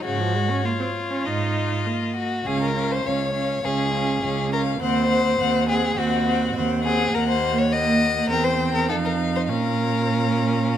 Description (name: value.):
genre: quick classical-period movement for string quartet.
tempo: 102 BPM.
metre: 4/4.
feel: straight.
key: Db major, Bb minor from 7.1 s.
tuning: A4 = 436 Hz.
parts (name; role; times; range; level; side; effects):
rich violin; melody; 0.0-10.8 s; Db5 to G5; -29 LUFS; left 11 dB; none.
rich violin; second line; 0.0-10.8 s; F4 to Eb5; -24 LUFS; left 3 dB; none.
warm viola; accompaniment; 0.0-10.8 s; Db3 to Eb4; -27 LUFS; right 2 dB; none.
rich cello; bass; 0.1-10.8 s; Db2 to Bb2; -24 LUFS; right 4 dB; none.
room: moderate recital hall reverb, RT60 1.6 s.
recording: close, detailed microphones.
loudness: -20 LUFS.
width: side -10 dB against mid.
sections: 0.0-10.8 A section.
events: none.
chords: 0.1 Db/Ab; 1.3 Ab5; 2.5 Db; 4.8 Cdim/Eb; 7.1 Ebm; 8.3 C/E; 8.9 F7(no3); 9.5 Bbm.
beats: | 0.06 0.66 1.25 1.86 | 2.46 3.05 3.64 4.23 | 4.82 5.39 5.97 6.56 | 7.14 7.73 8.31 8.89 | 9.49 10.09 10.69.